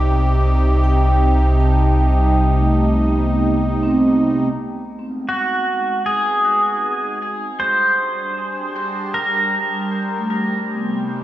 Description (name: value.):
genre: ambient.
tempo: 78 BPM.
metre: 4/4.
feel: straight.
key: unclear.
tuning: A4 = 439 Hz.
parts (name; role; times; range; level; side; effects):
warm analog pad; sustained chords; 0.0-11.2 s; C3 to A5; -22 LUFS; equal; chorus.
vibraphone with soft mallets; arpeggios; 0.0-11.2 s; G3 to A5; -22 LUFS; right 1 dB; dub echo.
deep rumbling drone; bass; 0.0-4.5 s; C2; -16 LUFS; equal; built-in reverb.
pedal steel guitar; melody; 5.3-10.3 s; F#4 to C5; -18 LUFS; equal; dub echo.
room: wet spring reverb, RT60 2.2 s.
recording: echo-heavy mix, small room ambience.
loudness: -15 LUFS.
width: side -13 dB against mid.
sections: 0.0-4.5 A section; 4.5-11.2 B section.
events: fade-in on analog synth pad 4.5-11.2; fade-in on vibraphone 4.5-11.2.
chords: 0.0 Cm; 4.5 G#m7; 7.6 Gmadd9; 10.7 Cm.